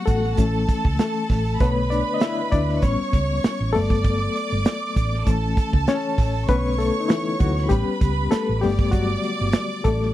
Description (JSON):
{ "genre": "lush 1970s-style soul", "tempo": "98 BPM", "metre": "4/4", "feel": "swing 54% on 16ths", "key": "unclear", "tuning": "A4 = 441 Hz", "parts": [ { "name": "bright studio violin section", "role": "second line", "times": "0.0-10.1 s", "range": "F#4 to D6", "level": "-28 LUFS", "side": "right 2 dB", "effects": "none" }, { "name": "barky reed electric piano", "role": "accompaniment", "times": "0.0-10.1 s", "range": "D3 to E5", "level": "-24 LUFS", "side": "left 4 dB", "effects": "overdrive, fast tremolo" }, { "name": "hollow-body short-scale fingered electric bass", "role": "bass", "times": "0.1-10.1 s", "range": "G1 to D2", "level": "-24 LUFS", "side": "right 1 dB", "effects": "none" }, { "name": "warm soul drum kit", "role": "drums", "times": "0.1-10.1 s", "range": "hi-hat, kick drum, snare drum", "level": "-21 LUFS", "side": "right 1 dB", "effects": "none" } ], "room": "small room ambience", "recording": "dry, close 1970s-style studio recording", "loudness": "-19 LUFS", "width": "side -14 dB against mid", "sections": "0.0-10.1 A section", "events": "reed electric piano solo 0.0-10.1", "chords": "0.4 A; 1.6 Bm7; 2.8 A9; 3.7 Gmaj9; 5.3 A; 6.5 Bm7; 7.7 A9; 8.6 Gmaj9" }